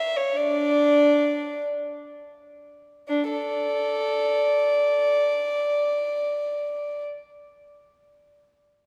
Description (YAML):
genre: classical, baroque-style suite movement for unaccompanied violin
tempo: free time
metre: none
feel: none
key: unclear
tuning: A4 = 438 Hz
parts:
  - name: rich violin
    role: solo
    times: 0.0-7.0 s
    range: D4 to E5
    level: -24 LUFS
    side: equal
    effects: none
room: wet church reverb, RT60 3.3 s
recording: none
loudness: -24 LUFS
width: mono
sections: 0.0-3.1 A section; 3.1-8.8 B section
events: slowing down 0.0-3.1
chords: none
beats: free time